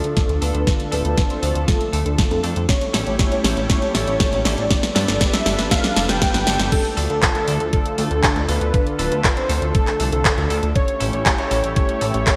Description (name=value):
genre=italo disco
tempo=119 BPM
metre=4/4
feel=straight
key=D dorian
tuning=A4 = 438 Hz
part: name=unison lead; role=melody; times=0.0-12.4 s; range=A4 to G5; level=-26 LUFS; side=equal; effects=delay
part: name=lush unison pad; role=sustained chords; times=0.0-12.4 s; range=D3 to C#5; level=-29 LUFS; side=equal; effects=chorus
part: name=direct-recorded clean electric guitar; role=stabs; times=0.0-12.4 s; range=F3 to B4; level=-33 LUFS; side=equal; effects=lush chorus, low-pass filter
part: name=chorused synth bass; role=bass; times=0.0-12.2 s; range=D1 to G2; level=-25 LUFS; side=equal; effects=none
part: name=house drum kit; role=drums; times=0.0-12.4 s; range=crash cymbal, handclaps, hi-hat, snare drum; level=-24 LUFS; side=equal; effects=gated reverb
part: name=electronic kick drum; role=drums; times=0.2-12.4 s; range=none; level=-22 LUFS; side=equal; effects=none
room=moderate lush hall reverb, RT60 1.9 s, digital ambience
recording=bright 1980s-style digital production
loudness=-19 LUFS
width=mono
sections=0.0-6.7 A section; 6.7-12.4 B section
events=drum fill 0.0-6.7; filter sweep on analog synth lead 0.0-6.7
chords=0.0 Dm; 2.7 A7; 4.7 Gadd9; 6.7 Dm; 10.8 A7